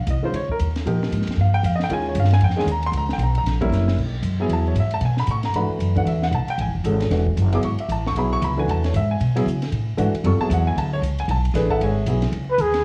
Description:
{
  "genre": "modal jazz",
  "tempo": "230 BPM",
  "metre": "4/4",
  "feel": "swing 59% on 8ths",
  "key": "B dorian from 4.0 s",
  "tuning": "A4 = 440 Hz",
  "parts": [
    { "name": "warm baby grand piano", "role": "accompaniment", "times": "0.0-12.2 s", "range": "D#3 to D6", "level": "-26 LUFS", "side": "equal", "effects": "none" },
    { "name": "upright bass", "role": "bass", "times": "0.0-12.8 s", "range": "E1 to C#3", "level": "-23 LUFS", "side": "equal", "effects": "tube saturation" },
    { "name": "compact cocktail drum kit", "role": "drums", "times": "0.1-12.8 s", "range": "crash cymbal, hi-hat, kick drum, ride cymbal, snare drum", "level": "-35 LUFS", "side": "equal", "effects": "none" },
    { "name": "breathy trumpet", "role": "melody", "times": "12.5-12.8 s", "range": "G#4 to B4", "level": "-20 LUFS", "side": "equal", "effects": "none" }
  ],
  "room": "light reverb",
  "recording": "worn, warbling old tape, cassette tape, vinyl crackle, warbly pitch drift, studio ambience",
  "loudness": "-21 LUFS",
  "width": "mono",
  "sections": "0.0-4.0 A section; 4.0-12.3 A section",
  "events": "drum fill 3.7",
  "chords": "0.0 D#9sus4; 2.9 F#7b9; 4.0 B13sus4; 12.3 C#7sus2",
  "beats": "0.08 0.34 0.60 | 0.86 1.12 1.38 1.64 | 1.90 2.16 2.42 2.68 | 2.94 3.20 3.46 3.72 | 3.98 4.24 4.50 4.76 | 5.02 5.28 5.54 5.81 | 6.07 6.33 6.59 6.85 | 7.11 7.37 7.63 7.89 | 8.16 8.42 8.68 8.94 | 9.20 9.46 9.72 9.98 | 10.24 10.51 10.77 11.03 | 11.29 11.55 11.81 12.07 | 12.34 12.60"
}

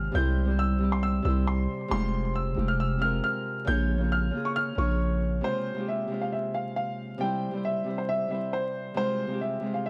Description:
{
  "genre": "hip hop, trap",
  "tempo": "136 BPM",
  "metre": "4/4",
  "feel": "half-time",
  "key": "F harmonic minor",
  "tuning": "A4 = 440 Hz",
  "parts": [
    { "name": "dark baby grand piano", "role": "melody", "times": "0.0-9.9 s", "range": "C5 to G6", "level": "-33 LUFS", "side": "equal", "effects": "none" },
    { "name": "Celtic harp", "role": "accompaniment", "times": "0.0-9.9 s", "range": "C3 to Db5", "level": "-34 LUFS", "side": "equal", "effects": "none" },
    { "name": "growling 808-style bass", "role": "bass", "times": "0.0-5.4 s", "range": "F1 to C2", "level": "-28 LUFS", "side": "equal", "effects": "none" }
  ],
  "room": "studio reverb",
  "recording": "dark, warm production, vinyl crackle",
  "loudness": "-28 LUFS",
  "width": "mono",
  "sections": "0.0-5.4 A section; 5.4-9.9 B section",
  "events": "none",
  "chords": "0.1 C; 1.9 Fm; 3.7 Bbm; 5.4 Fm; 7.2 C; 9.0 Fm",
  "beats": "| 0.15 0.59 1.03 1.47 | 1.91 2.35 2.79 3.24 | 3.68 4.12 4.56 5.00 | 5.44 5.88 6.32 6.76 | 7.21 7.65 8.09 8.53 | 8.97 9.41 9.85"
}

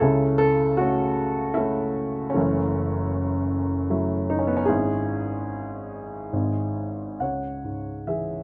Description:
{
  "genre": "classical, lyrical solo piano",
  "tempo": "67-78 BPM",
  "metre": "3/4",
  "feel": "rubato",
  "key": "C# minor",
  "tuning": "A4 = 438 Hz",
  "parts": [
    { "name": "dark upright piano", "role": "solo", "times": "0.0-8.4 s", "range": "F#1 to F#5", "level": "-25 LUFS", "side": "equal", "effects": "none" }
  ],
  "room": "light reverb",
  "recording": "close, detailed microphones",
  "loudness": "-25 LUFS",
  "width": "mono",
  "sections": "0.0-7.2 A section; 7.2-8.4 B section",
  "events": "none",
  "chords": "0.0 A/C#; 2.4 F#m7; 4.7 C#m/G#; 7.2 C#m",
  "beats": "| 0.01 0.80 1.58 | 2.35 3.13 3.90 | 4.68 5.49 6.33 | 7.20 8.08"
}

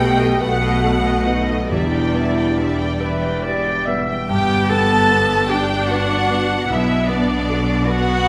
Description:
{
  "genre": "cinematic, emotional film score for orchestra",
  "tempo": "45-52 BPM (dotted quarters)",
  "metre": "6/8",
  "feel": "rubato",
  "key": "G major",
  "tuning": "A4 = 440 Hz",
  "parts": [
    { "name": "rich studio violin section", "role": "melody", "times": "0.0-8.3 s", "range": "D5 to A5", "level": "-29 LUFS", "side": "equal", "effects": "none" },
    { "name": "rich studio violin section", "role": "second line", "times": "0.0-8.3 s", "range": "D5 to A5", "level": "-26 LUFS", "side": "equal", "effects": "none" },
    { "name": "rich studio viola section", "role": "accompaniment", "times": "0.0-8.3 s", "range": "G3 to D4", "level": "-27 LUFS", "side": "equal", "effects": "none" },
    { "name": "warm concert grand piano", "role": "accompaniment", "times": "0.0-8.3 s", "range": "B1 to B4", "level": "-26 LUFS", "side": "equal", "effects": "none" },
    { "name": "dark French horn section", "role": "sustained chords", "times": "0.0-3.8 s", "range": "D4 to G4", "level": "-27 LUFS", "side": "equal", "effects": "none" },
    { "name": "concert harp", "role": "arpeggios", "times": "0.0-8.3 s", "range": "G2 to E5", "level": "-29 LUFS", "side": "equal", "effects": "none" },
    { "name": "rich studio cello section", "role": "bass", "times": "0.0-8.3 s", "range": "E2 to B2", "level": "-28 LUFS", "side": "equal", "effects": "none" },
    { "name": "rich studio double bass section", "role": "bass", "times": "0.0-8.3 s", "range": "E1 to B1", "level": "-27 LUFS", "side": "equal", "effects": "none" },
    { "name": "warm clarinet", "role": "second line", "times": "3.0-4.3 s", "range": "B4 to E5", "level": "-26 LUFS", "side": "equal", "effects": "none" },
    { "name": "warm cello", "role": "melody", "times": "4.3-8.3 s", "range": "D4 to A4", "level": "-23 LUFS", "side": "equal", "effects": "none" }
  ],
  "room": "wet recital hall reverb, RT60 1.7 s",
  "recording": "none",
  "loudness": "-18 LUFS",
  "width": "mono",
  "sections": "0.0-4.3 A section; 4.3-8.3 A section",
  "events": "none",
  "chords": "0.0 B7; 1.7 Em7; 4.3 G; 6.7 Bm7",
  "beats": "0.41 | 1.71 3.01 | 4.29 5.50 | 6.69 7.86"
}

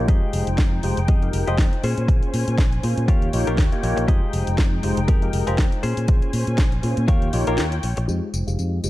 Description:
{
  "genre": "filtered disco house",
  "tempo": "120 BPM",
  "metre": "4/4",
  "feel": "swing 56% on 16ths",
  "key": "F minor",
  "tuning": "A4 = 439 Hz",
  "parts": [
    { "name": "tine electric piano", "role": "accompaniment", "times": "0.0-8.9 s", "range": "Ab3 to G5", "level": "-27 LUFS", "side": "equal", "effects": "phaser, sidechain pumping, low-pass filter" },
    { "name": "muted studio string section", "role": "sustained chords", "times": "0.0-8.9 s", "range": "Ab3 to Ab5", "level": "-32 LUFS", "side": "left 2 dB", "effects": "sidechain pumping, low-pass filter" },
    { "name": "fingered electric bass", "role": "bass", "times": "0.0-8.9 s", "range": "F1 to Bb2", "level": "-23 LUFS", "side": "equal", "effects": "sidechain pumping, low-pass filter" },
    { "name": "direct-recorded clean electric guitar", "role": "riff", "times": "0.1-8.8 s", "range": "Db4 to F5", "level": "-31 LUFS", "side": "left 4 dB", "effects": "sidechain pumping, low-pass filter" },
    { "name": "electronic kick drum", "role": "drums", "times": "0.1-7.2 s", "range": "none", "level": "-18 LUFS", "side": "equal", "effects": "overdrive" },
    { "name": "house drum kit", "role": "drums", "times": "0.1-8.9 s", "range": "hi-hat, snare drum, tambourine", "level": "-30 LUFS", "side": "equal", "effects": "overdrive, sidechain pumping on hats, sidechain pumping on perc" }
  ],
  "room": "digital ambience",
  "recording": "dark, warm production",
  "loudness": "-18 LUFS",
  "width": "side -16 dB against mid",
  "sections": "0.0-8.1 A section",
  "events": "break 7.6-8.1",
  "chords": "0.1 Fm9; 1.8 Bbm9; 3.1 Eb9; 4.1 Fm9; 5.8 Bbm9; 7.1 Eb9; 8.1 Fm9",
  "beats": "| 0.09 0.58 1.08 1.58 | 2.08 2.58 3.08 3.58 | 4.08 4.58 5.08 5.58 | 6.08 6.58 7.08 7.58 | 8.09 8.59"
}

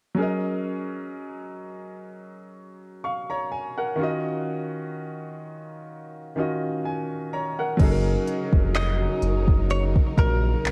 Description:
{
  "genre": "contemporary R&B",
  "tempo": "63 BPM",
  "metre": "4/4",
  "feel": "swing 54% on 16ths",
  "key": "F# major",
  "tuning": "A4 = 444 Hz",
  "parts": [
    { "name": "bright baby grand piano", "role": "accompaniment", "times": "0.1-10.7 s", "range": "D#3 to C#6", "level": "-31 LUFS", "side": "equal", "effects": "none" },
    { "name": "warm studio string section", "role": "sustained chords", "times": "7.8-10.7 s", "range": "C#3 to A#4", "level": "-32 LUFS", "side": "equal", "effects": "sidechain pumping" },
    { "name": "smooth gliding synth bass", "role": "bass", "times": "7.8-10.7 s", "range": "E#1 to B1", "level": "-26 LUFS", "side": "equal", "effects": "none" },
    { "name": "smooth R&B drum kit", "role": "drums", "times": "7.8-10.7 s", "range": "crash cymbal, handclaps, hi-hat, kick drum", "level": "-24 LUFS", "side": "equal", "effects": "none" },
    { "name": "celesta", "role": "texture", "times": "8.3-10.7 s", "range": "D#5", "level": "-45 LUFS", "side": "equal", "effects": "none" },
    { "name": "direct-recorded clean electric guitar", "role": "melody", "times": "8.8-10.7 s", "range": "A#4 to D#5", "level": "-32 LUFS", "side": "equal", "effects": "lush chorus, analog delay" }
  ],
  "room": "light reverb, digital ambience",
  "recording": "dark, warm production",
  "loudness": "-25 LUFS",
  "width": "mono",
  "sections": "0.2-7.8 A section; 7.8-10.7 B section",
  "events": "none",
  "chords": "0.2 F#6; 4.0 D#m7; 7.8 F#6",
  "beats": "| 0.18 1.13 2.08 3.03 | 3.99 4.94 5.89 6.84 | 7.80 8.75 9.70 10.65"
}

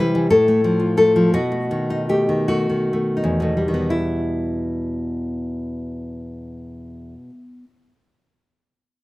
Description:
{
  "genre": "romantic piece for solo classical guitar",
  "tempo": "38-61 BPM (dotted quarters)",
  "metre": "6/8",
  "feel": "rubato",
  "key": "E minor",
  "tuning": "A4 = 443 Hz",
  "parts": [
    { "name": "nylon-string guitar", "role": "solo", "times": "0.0-7.8 s", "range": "E2 to B4", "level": "-18 LUFS", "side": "left 1 dB", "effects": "slapback echo" }
  ],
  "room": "light reverb",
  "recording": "recorded outdoors, with no room sound",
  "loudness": "-18 LUFS",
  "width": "side -19 dB against mid",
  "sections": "0.0-3.9 A section; 3.9-9.0 B section",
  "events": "slowing down 0.0-3.9",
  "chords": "0.3 F/A; 1.3 B7; 3.9 Em",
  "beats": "0.32 | 1.35 2.50 | 3.93 5.24 | 6.55"
}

